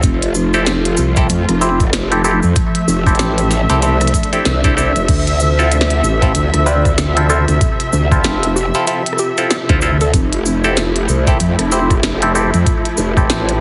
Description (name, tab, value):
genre	glitch hop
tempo	95 BPM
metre	4/4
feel	swing 60% on 16ths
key	unclear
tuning	A4 = 438 Hz
part	muted studio string section	sustained chords	0.0-13.6 s	C3 to E5	-22 LUFS	equal	sidechain pumping
part	growl bass	bass	0.0-13.6 s	F1 to F2	-18 LUFS	equal	chorus, overdrive
part	electronic kick drum	drums	0.0-13.3 s	none	-19 LUFS	equal	none
part	glitchy drum kit	drums	0.0-13.6 s	crash cymbal, hi-hat, rim click, snare drum	-23 LUFS	equal	none
part	cabasa	percussion	0.0-13.4 s	none	-28 LUFS	equal	none
part	bright clav	stabs	0.5-13.6 s	C4 to C5	-22 LUFS	equal	phaser, sidechain pumping, digital delay
part	swell	sound effects	4.2-5.1 s	none	-29 LUFS	equal	none
part	woody wave-folded pluck	melody	6.7-10.2 s	G4 to D5	-25 LUFS	equal	chorus, cassette tape, digital delay
room	light reverb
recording	heavily compressed radio sound, multiband compression, vinyl crackle, nothing above 11.0 kHz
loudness	-14 LUFS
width	mono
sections	0.0-13.6 A section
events	swell 4.2-5.1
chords	0.0 Fmaj7; 5.1 Dm9; 10.1 Fmaj7